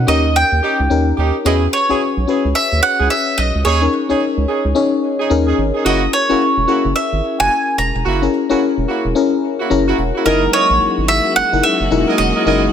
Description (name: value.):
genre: R&B.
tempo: 109 BPM.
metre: 4/4.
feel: swing 61% on 16ths.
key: unclear.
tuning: A4 = 440 Hz.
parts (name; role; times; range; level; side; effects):
bowl-back mandolin; melody; 0.0-12.7 s; A#4 to A#5; -16 LUFS; right 1 dB; none.
FM electric piano; accompaniment; 0.0-12.7 s; C#4 to A#5; -18 LUFS; left 6 dB; chorus.
round analog bass; bass; 0.0-12.7 s; E1 to E2; -19 LUFS; right 1 dB; none.
warm horn section; stabs; 0.1-12.6 s; A#3 to D#5; -22 LUFS; right 6 dB; ping-pong delay.
warm studio string section; sustained chords; 10.3-12.7 s; F#3 to F#4; -21 LUFS; equal; none.
room: moderate echo chamber reverb, RT60 1.4 s, small room ambience.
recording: none.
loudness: -13 LUFS.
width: side -8 dB against mid.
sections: 0.0-1.4 A section; 1.4-10.3 B section; 10.3-12.7 C section.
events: FM electric piano fill 9.4-10.3.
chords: 0.1 D#7; 1.4 E6; 3.6 D#7sus4; 5.9 F#7; 10.3 F#13.